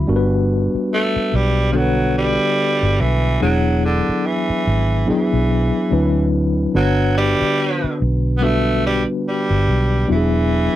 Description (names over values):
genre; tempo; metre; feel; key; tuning
lush 1970s-style soul; 72 BPM; 4/4; swing 58% on 16ths; unclear; A4 = 439 Hz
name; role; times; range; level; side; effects
mellow tine electric piano; accompaniment; 0.0-10.8 s; D3 to B4; -19 LUFS; left 2 dB; fast stereo tremolo
vintage muted fingered electric bass; bass; 0.0-10.7 s; E1 to D2; -19 LUFS; right 1 dB; none
raspy tenor saxophone; melody; 0.9-10.8 s; D3 to B3; -20 LUFS; right 2 dB; none
room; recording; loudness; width
little or no reverb; dry, close 1970s-style studio recording; -15 LUFS; side -13 dB against mid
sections
0.1-10.8 A section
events
none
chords
0.1 Gmaj7; 3.4 E9; 5.9 D13; 6.8 Gmaj7; 10.1 E9